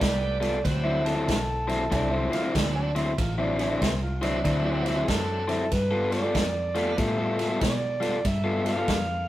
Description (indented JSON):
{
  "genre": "electric blues shuffle",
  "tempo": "95 BPM",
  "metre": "4/4",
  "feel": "swing 64% on 8ths",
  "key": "D mixolydian",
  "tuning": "A4 = 440 Hz",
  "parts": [
    { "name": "overdriven harmonica", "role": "melody", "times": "0.0-9.3 s", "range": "G#4 to F5", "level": "-30 LUFS", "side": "right 2 dB", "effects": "none" },
    { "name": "bright tonewheel organ", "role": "accompaniment", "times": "0.0-7.0 s", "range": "F#3 to G4", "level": "-35 LUFS", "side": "right 2 dB", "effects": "slow rotary speaker, overdrive" },
    { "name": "overdriven electric guitar", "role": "riff", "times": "0.0-8.9 s", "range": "D3 to A4", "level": "-28 LUFS", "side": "left 2 dB", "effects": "none" },
    { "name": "vintage muted fingered electric bass", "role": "bass", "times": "0.0-9.3 s", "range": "A1 to B2", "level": "-30 LUFS", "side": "equal", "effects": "none" },
    { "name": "swinging big-band drum kit", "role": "drums", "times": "0.0-9.1 s", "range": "kick drum, ride cymbal, snare drum", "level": "-30 LUFS", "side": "equal", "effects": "none" },
    { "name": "growling tenor saxophone", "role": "second line", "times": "1.9-4.9 s", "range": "C4 to F4", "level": "-32 LUFS", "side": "right 2 dB", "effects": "none" }
  ],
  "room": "moderate stone room reverb, RT60 1.2 s",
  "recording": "rough rehearsal-room recording, warm saturation",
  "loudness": "-23 LUFS",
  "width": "side -14 dB against mid",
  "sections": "0.0-9.3 A section",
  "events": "none",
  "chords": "0.0 G9; 0.6 D9; 5.7 G9",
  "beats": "0.01 | 0.65 1.28 1.91 2.55 | 3.18 3.81 4.45 5.08 | 5.72 6.35 6.98 7.62 | 8.25 8.88"
}